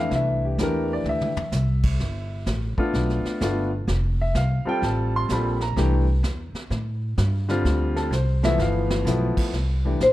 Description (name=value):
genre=jazz, small-group swing and bop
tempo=127 BPM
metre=4/4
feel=swing 66% on 8ths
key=C major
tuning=A4 = 440 Hz
part: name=warm grand piano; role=accompaniment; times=0.0-10.0 s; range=D3 to C6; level=-25 LUFS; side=left 1 dB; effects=none
part: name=upright bass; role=bass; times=0.0-10.1 s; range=F1 to A2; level=-23 LUFS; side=equal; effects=none
part: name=vintage brush drum kit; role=drums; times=0.1-10.1 s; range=brushed snare drum, crash cymbal, hi-hat, kick drum, snare drum, toms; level=-29 LUFS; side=equal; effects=none
part: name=vibraphone with medium hard mallets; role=melody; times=10.0-10.1 s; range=C5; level=-14 LUFS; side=left 2 dB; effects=none
room=light reverb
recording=dark, warm production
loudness=-21 LUFS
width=side -15 dB against mid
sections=0.0-9.5 A section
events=drum fill 1.1-1.5, 8.1-9.1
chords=0.1 C; 2.0 G7; 3.9 F; 5.8 C7; 7.6 Dm7; 8.6 G13; 9.5 C7